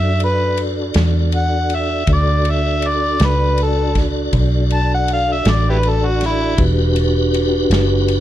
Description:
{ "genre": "slow blues", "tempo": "53 BPM (dotted quarters)", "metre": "12/8", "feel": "straight", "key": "B minor", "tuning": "A4 = 440 Hz", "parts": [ { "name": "overdriven harmonica", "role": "melody", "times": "0.0-6.6 s", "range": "E4 to A5", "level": "-20 LUFS", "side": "left 1 dB", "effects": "none" }, { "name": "tonewheel organ", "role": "sustained chords", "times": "0.0-8.2 s", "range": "D4 to D5", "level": "-20 LUFS", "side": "right 2 dB", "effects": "slow rotary speaker, overdrive, chorus vibrato" }, { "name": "vintage muted fingered electric bass", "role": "bass", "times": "0.0-8.2 s", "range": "E1 to F#2", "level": "-17 LUFS", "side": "equal", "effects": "none" }, { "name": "natural country drum kit", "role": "drums", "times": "0.2-8.2 s", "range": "kick drum, ride cymbal, snare drum", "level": "-23 LUFS", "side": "equal", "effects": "none" } ], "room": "light reverb, studio ambience", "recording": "none", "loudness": "-14 LUFS", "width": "side -12 dB against mid", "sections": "0.0-8.2 A section", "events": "harmonica solo 0.0-8.2", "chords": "0.0 Bm9; 6.6 Em9" }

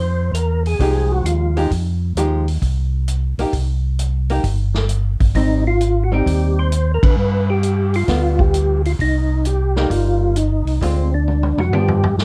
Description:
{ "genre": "soul jazz organ trio", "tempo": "132 BPM", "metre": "4/4", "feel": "swing 68% on 8ths", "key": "C minor", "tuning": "A4 = 439 Hz", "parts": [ { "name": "percussive tonewheel organ", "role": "melody", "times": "0.0-1.7, 5.4-12.2 s", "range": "C4 to C5", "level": "-24 LUFS", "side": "equal", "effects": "slow rotary speaker, chorus vibrato" }, { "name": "mellow tonewheel organ", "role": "bass", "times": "0.0-12.2 s", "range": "G1 to D3", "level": "-20 LUFS", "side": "equal", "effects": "overdrive, chorus vibrato, slow rotary speaker" }, { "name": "vintage drum kit", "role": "drums", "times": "0.3-12.2 s", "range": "hi-hat, kick drum, ride cymbal, snare drum, toms", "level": "-24 LUFS", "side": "equal", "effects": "none" }, { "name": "archtop guitar, miked and amplified", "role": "accompaniment", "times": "0.8-12.0 s", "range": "D3 to G4", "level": "-25 LUFS", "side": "equal", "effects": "none" } ], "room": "light reverb", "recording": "dark, warm production", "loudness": "-18 LUFS", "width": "mono", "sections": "0.0-12.2 A section", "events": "band accent 6.9; drum fill 11.3-12.2", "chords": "0.0 Fm9; 3.5 C5; 5.3 Abmaj7; 7.2 G7; 9.0 Cm7; 10.8 Dm7b5; 11.7 G7" }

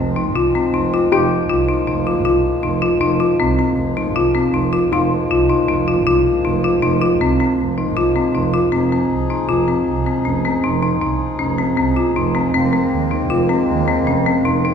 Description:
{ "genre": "contemporary instrumental, chamber music in an uneven meter", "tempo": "158 BPM", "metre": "5/4", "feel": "straight", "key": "F minor", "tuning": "A4 = 440 Hz", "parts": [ { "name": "steel pan", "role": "second line", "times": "0.0-8.5 s", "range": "F4 to G4", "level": "-22 LUFS", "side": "left 4 dB", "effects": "none" }, { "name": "hand-pumped harmonium", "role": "sustained chords", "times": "0.0-14.7 s", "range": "F3 to Ab4", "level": "-24 LUFS", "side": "left 4 dB", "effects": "none" }, { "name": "folk marimba with hard mallets", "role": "arpeggios", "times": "0.0-14.7 s", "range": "C4 to F4", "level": "-16 LUFS", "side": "left 2 dB", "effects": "none" }, { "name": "dark double bass", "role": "bass", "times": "0.0-14.7 s", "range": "F1 to Eb2", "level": "-21 LUFS", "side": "right 5 dB", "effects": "none" } ], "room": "wet scoring stage reverb, RT60 1.8 s", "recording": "minimal, uncompressed stereo recording", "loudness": "-15 LUFS", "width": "side -7 dB against mid", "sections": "0.0-8.7 A section; 8.7-14.7 B section", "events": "none", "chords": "0.0 Fm; 8.7 Fm7; 12.5 Abadd9/F" }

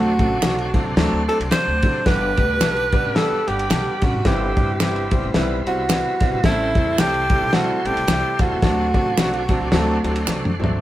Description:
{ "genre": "uptempo 1960s-style soul", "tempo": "110 BPM", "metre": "4/4", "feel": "swing 58% on 8ths", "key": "unclear", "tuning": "A4 = 440 Hz", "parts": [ { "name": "breathy tenor saxophone", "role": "melody", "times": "0.0-10.2 s", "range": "E4 to C5", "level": "-22 LUFS", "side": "right 1 dB", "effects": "none" }, { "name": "clear grand piano", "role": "accompaniment", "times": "0.0-10.8 s", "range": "F#3 to A5", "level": "-25 LUFS", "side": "left 1 dB", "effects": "none" }, { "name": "tonewheel organ", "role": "sustained chords", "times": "0.0-10.8 s", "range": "G3 to C6", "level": "-32 LUFS", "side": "equal", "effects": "slow rotary speaker, chorus vibrato" }, { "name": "upright bass", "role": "bass", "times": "0.0-10.8 s", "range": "G1 to D3", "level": "-25 LUFS", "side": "equal", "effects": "none" }, { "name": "warm soul drum kit", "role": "drums", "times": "0.2-10.8 s", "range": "kick drum, ride cymbal, snare drum, toms", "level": "-21 LUFS", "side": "equal", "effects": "none" }, { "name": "finger snap", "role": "percussion", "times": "0.4-10.4 s", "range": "none", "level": "-29 LUFS", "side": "right 5 dB", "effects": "none" } ], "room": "light reverb", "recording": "band playing live in one room", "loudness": "-17 LUFS", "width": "side -14 dB against mid", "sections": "0.0-10.8 A section", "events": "grand piano fill 10.0-10.8; drum fill 10.3-10.8", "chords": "0.0 D7; 2.1 Gmaj7; 4.2 Cmaj7/G; 6.4 Am7; 8.6 D7" }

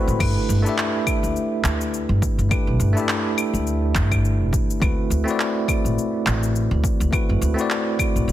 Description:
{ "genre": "sunset chillout", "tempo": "104 BPM", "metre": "4/4", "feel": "swing 57% on 16ths", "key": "G major", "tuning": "A4 = 440 Hz", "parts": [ { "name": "bell-like tine electric piano", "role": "accompaniment", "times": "0.0-8.3 s", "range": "A3 to E5", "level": "-23 LUFS", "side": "equal", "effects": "auto-pan, tape echo" }, { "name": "upright bass", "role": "bass", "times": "0.0-8.3 s", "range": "E1 to F#2", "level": "-22 LUFS", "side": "equal", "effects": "none" }, { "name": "deep house drum kit", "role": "drums", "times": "0.1-8.3 s", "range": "cabasa, claves, crash cymbal, handclaps", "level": "-27 LUFS", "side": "left 1 dB", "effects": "overdrive" }, { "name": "electronic kick drum", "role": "drums", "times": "0.2-8.1 s", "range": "none", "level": "-23 LUFS", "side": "equal", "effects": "overdrive" } ], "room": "light reverb, digital ambience", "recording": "dense, heavily limited modern master", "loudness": "-18 LUFS", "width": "side -13 dB against mid", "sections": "0.2-8.3 A section", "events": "none", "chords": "0.2 G6; 4.8 D13" }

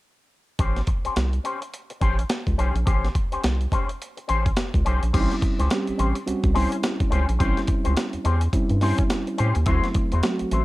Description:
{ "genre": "funk", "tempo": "106 BPM", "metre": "4/4", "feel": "swing 60% on 16ths", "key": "unclear", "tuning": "A4 = 440 Hz", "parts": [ { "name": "electric guitar with an envelope filter", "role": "accompaniment", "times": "0.6-10.6 s", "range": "C#4 to B#4", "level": "-29 LUFS", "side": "left 4 dB", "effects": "tube saturation, ensemble chorus" }, { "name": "round analog bass", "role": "bass", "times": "0.6-10.6 s", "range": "A1 to A2", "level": "-22 LUFS", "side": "equal", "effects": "none" }, { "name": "breakbeat sampler-style drum kit", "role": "drums", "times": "0.6-10.6 s", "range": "crash cymbal, hi-hat, kick drum, snare drum", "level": "-24 LUFS", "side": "equal", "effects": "none" }, { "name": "mellow reed electric piano", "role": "stabs", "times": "5.1-10.6 s", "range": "F#3 to G4", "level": "-26 LUFS", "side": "right 2 dB", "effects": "tape echo" } ], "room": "digital ambience", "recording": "dark, warm production", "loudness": "-20 LUFS", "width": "side -18 dB against mid", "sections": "0.6-5.1 A section; 5.1-10.6 B section", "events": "none", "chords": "0.6 A7#9; 9.7 D9" }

